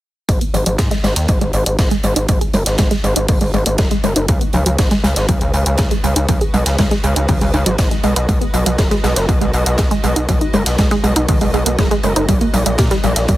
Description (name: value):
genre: melodic techno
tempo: 120 BPM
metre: 4/4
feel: straight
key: G# minor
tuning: A4 = 441 Hz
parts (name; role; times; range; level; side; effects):
- wide unison pluck; arpeggios; 0.3-13.3 s; D#3 to B4; -19 LUFS; right 1 dB; sidechain pumping, dub echo
- gritty driven synth bass; bass; 0.3-13.4 s; F#1 to A#2; -17 LUFS; equal; tube saturation, sidechain pumping
- big rock drum kit; drums; 0.3-13.4 s; hi-hat, snare drum; -27 LUFS; right 1 dB; high-pass filter on hats, high-pass filter on snare, high-pass filter on room
- electronic hi-hat; drums; 0.3-13.4 s; none; -22 LUFS; right 1 dB; none
- electronic kick drum; drums; 0.3-13.4 s; none; -17 LUFS; equal; none
- granular cloud pad; texture; 2.5-13.4 s; F#4 to D#5; -32 LUFS; equal; none
room: digital ambience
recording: heavily compressed radio sound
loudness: -13 LUFS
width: side -15 dB against mid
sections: 0.3-13.4 A section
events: filter sweep on synth arpeggio sound 0.3-13.4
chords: 0.3 G#m; 4.3 C#5; 8.3 B; 12.3 D#/A#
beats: | 0.29 0.79 1.29 1.79 | 2.29 2.79 3.29 3.79 | 4.29 4.79 5.29 5.79 | 6.29 6.79 7.29 7.79 | 8.29 8.79 9.29 9.79 | 10.29 10.79 11.29 11.79 | 12.29 12.79 13.29